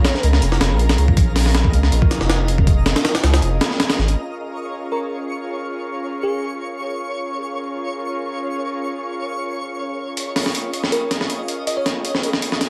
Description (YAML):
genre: drum and bass, jungle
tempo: 160 BPM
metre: 4/4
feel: swing 53% on 16ths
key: Bb minor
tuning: A4 = 440 Hz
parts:
  - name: bell-like FM electric piano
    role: melody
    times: 0.0-0.3, 4.9-6.5, 10.9-12.3 s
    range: Ab4 to Eb5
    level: -29 LUFS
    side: equal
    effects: chorus, phaser, dub echo
  - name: airy breathy pad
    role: sustained chords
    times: 0.0-12.7 s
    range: Db4 to F5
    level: -30 LUFS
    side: equal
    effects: chorus
  - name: breakbeat sampler-style drum kit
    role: drums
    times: 0.0-4.2, 10.2-12.7 s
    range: hi-hat, kick drum, snare drum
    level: -21 LUFS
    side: equal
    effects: none
  - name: twinkling granular texture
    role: texture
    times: 0.0-12.7 s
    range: Bb4 to Db6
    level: -32 LUFS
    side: equal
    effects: built-in reverb
  - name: saturated sub bass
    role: bass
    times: 0.2-4.2 s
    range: F1 to Db2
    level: -19 LUFS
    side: equal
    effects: tube saturation
room: light reverb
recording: vinyl crackle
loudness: -20 LUFS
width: mono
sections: 0.0-4.2 A section; 4.2-12.7 B section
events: drop 0.0-4.2; break 3.4-4.2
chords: 0.0 Bbm7